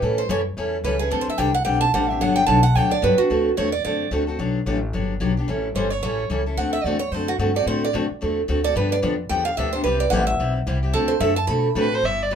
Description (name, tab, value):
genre	acoustic string swing (jazz manouche)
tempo	220 BPM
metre	4/4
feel	swing 58% on 8ths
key	unclear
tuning	A4 = 440 Hz
part	picked steel-string acoustic guitar	second line	0.0-11.9 s	F#4 to B5	-22 LUFS	right 3 dB	none
part	picked steel-string acoustic guitar	accompaniment	0.0-12.4 s	C3 to A4	-23 LUFS	left 2 dB	none
part	upright bass	bass	0.0-12.4 s	G1 to B2	-25 LUFS	left 1 dB	none
part	dark violin	melody	11.8-12.4 s	B4 to E5	-21 LUFS	right 1 dB	none
room	moderate club reverb, RT60 0.5 s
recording	minimal, uncompressed stereo recording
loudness	-19 LUFS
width	side -8 dB against mid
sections	0.0-3.3 A section; 3.3-12.0 A section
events	steel-string acoustic guitar solo 0.0-12.0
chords	0.0 A7; 1.1 D7sus4; 2.2 Gmaj7; 3.3 D7; 4.4 Gmaj7; 5.5 A7; 6.6 D7; 8.8 G7; 9.8 C; 10.9 D7